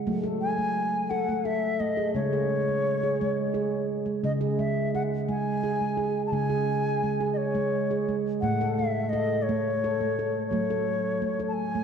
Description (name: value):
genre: world meditative, meditative tuned percussion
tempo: 57 BPM (dotted quarters)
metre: 6/8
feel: straight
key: C# minor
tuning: A4 = 441 Hz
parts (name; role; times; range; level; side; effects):
- handpan; arpeggios; 0.0-11.8 s; A2 to A4; -26 LUFS; right 1 dB; none
- bright bansuri; melody; 0.4-11.8 s; C#5 to A5; -30 LUFS; left 2 dB; tape echo
room: wet echo chamber reverb, RT60 2.1 s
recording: dark, warm production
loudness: -25 LUFS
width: side -7 dB against mid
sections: 0.0-4.2 A section; 4.2-11.8 B section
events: none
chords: 0.1 F#m; 2.1 C#5; 8.4 A; 10.5 F#m